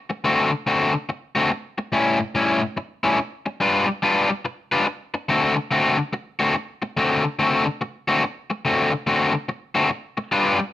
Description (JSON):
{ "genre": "blues", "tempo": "143 BPM", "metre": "4/4", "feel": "swing 64% on 8ths", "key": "D mixolydian", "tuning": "A4 = 440 Hz", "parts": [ { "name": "crunchy overdriven guitar", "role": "solo", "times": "0.1-10.6 s", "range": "A2 to B4", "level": "-19 LUFS", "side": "left 2 dB", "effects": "none" } ], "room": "light reverb", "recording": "none", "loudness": "-19 LUFS", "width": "side -13 dB against mid", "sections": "0.0-8.6 A section; 8.6-10.7 B section", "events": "none", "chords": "0.0 D7; 1.9 A7; 3.6 G7; 5.3 D7" }